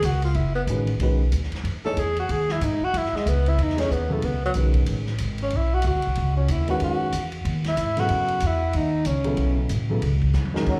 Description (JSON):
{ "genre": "modal jazz", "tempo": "186 BPM", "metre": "4/4", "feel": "swing 61% on 8ths", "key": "F# dorian", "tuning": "A4 = 439 Hz", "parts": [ { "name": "breathy tenor saxophone", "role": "melody", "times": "0.0-9.6 s", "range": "F#3 to A4", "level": "-28 LUFS", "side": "equal", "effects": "slapback echo" }, { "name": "upright bass", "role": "bass", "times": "0.0-10.8 s", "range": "F#1 to G#2", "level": "-26 LUFS", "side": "equal", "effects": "none" }, { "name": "swinging big-band drum kit", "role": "drums", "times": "0.0-10.8 s", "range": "crash cymbal, hi-hat, kick drum, ride cymbal, snare drum, toms", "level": "-37 LUFS", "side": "equal", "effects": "none" }, { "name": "dark upright piano", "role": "accompaniment", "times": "0.7-10.8 s", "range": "C#3 to C#5", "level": "-30 LUFS", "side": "equal", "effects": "slapback echo" }, { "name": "bright trombone", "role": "second line", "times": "10.7-10.8 s", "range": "Gb3", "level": "-28 LUFS", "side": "equal", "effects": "none" } ], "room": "light reverb, small room ambience", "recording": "live gig heard through the venue's PA, club reverb", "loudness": "-23 LUFS", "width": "mono", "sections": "0.4-10.7 A section", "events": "tenor saxophone solo 0.0-10.7; drum fill 10.3-10.7", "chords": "0.4 F#13sus4", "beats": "0.04 | 0.36 0.68 1.01 1.33 | 1.65 1.98 2.30 2.62 | 2.94 3.27 3.59 3.91 | 4.23 4.55 4.88 5.20 | 5.52 5.84 6.17 6.49 | 6.81 7.13 7.45 7.78 | 8.10 8.42 8.74 9.06 | 9.38 9.71 10.03 10.35 | 10.67" }